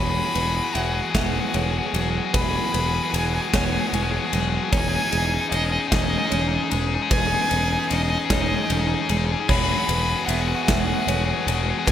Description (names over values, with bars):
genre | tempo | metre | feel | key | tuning
post-rock | 50 BPM (dotted quarters) | 6/8 | straight | E major | A4 = 443 Hz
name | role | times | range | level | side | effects
clear violin | melody | 0.0-11.9 s | D#5 to B5 | -28 LUFS | equal | analog delay
evolving wavetable pad | sustained chords | 0.0-11.9 s | E3 to G#4 | -35 LUFS | right 3 dB | chorus, built-in reverb
felt-muted upright piano | arpeggios | 0.0-11.9 s | G#4 to E5 | -36 LUFS | right 11 dB | analog delay
semi-hollow electric guitar | arpeggios | 0.0-11.9 s | E2 to F#4 | -31 LUFS | right 2 dB | spring reverb, analog delay
overdriven semi-hollow guitar | riff | 0.0-11.9 s | D#4 to G#4 | -25 LUFS | left 6 dB | none
modern bright picked electric bass | bass | 0.0-11.9 s | E1 | -26 LUFS | equal | none
huge arena drum kit | drums | 0.4-11.9 s | crash cymbal, kick drum, ride cymbal, snare drum | -26 LUFS | equal | none
room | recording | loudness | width
light reverb | none | -20 LUFS | side -10 dB against mid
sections
0.0-11.9 A section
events
build-up 0.0-11.9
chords
0.0 Eadd9; 4.7 C#madd9/E; 9.5 Eadd9